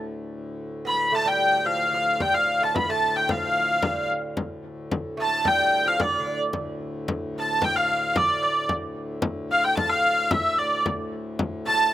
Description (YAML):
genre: medieval dance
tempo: 111 BPM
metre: 2/4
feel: straight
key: D dorian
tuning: A4 = 439 Hz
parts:
  - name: pedal harmonium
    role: drone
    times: 0.0-11.9 s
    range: D2 to A2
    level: -34 LUFS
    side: left 1 dB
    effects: none
  - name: lute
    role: second line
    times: 0.8-6.4, 11.7-11.9 s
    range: D3 to B3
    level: -31 LUFS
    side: right 4 dB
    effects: none
  - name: clear hurdy-gurdy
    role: melody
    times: 0.9-11.9 s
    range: D5 to B5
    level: -21 LUFS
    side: equal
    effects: none
  - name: frame drum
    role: percussion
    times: 2.2-11.6 s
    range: none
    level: -28 LUFS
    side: left 2 dB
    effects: none
room: little or no reverb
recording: recorded outdoors, with no room sound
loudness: -21 LUFS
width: side -12 dB against mid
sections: 0.0-6.5 A section; 6.5-11.9 A section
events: none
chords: none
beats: | 0.03 0.58 | 1.12 1.66 | 2.20 2.75 | 3.29 3.83 | 4.37 4.91 | 5.45 5.99 | 6.53 7.07 | 7.61 8.15 | 8.69 9.23 | 9.77 10.31 | 10.84 11.38 | 11.92